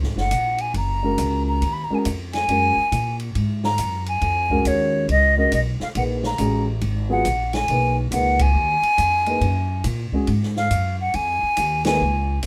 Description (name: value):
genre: modal jazz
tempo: 139 BPM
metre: 4/4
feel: swing 64% on 8ths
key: G# dorian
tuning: A4 = 440 Hz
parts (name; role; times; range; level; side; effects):
- upright bass; bass; 0.0-12.5 s; F#1 to A#2; -26 LUFS; equal; none
- open jazz drum kit; drums; 0.0-12.5 s; hi-hat, kick drum, ride cymbal, snare drum; -33 LUFS; equal; none
- breathy silver concert flute; melody; 0.2-12.4 s; C#5 to B5; -23 LUFS; equal; none
- dark concert grand piano; accompaniment; 1.0-12.0 s; F#3 to B4; -27 LUFS; equal; none
room: moderate small room reverb, RT60 0.5 s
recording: none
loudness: -21 LUFS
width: mono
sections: 0.0-12.5 A section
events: band accent 8.3, 11.8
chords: 0.0 G#9sus4